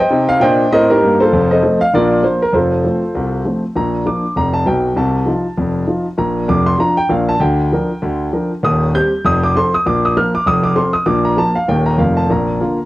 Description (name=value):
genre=jazz, stride piano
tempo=197 BPM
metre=4/4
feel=swing 58% on 8ths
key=Bb major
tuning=A4 = 442 Hz
part: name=warm grand piano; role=solo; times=0.0-12.9 s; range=Eb1 to G6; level=-12 LUFS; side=equal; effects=cassette tape
room=light reverb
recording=home recording on cassette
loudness=-12 LUFS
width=side -17 dB against mid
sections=0.0-3.7 A section; 3.7-12.9 B section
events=none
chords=0.1 Cm7; 1.3 F7; 1.9 Bb; 2.5 F; 3.7 Bb; 5.0 F7/C; 6.2 Bb; 7.4 Bb/D; 8.6 Cm/Eb; 9.2 F; 9.8 Bb5; 10.5 F; 11.1 Bb5; 11.7 Eb; 12.0 F7; 12.3 Bb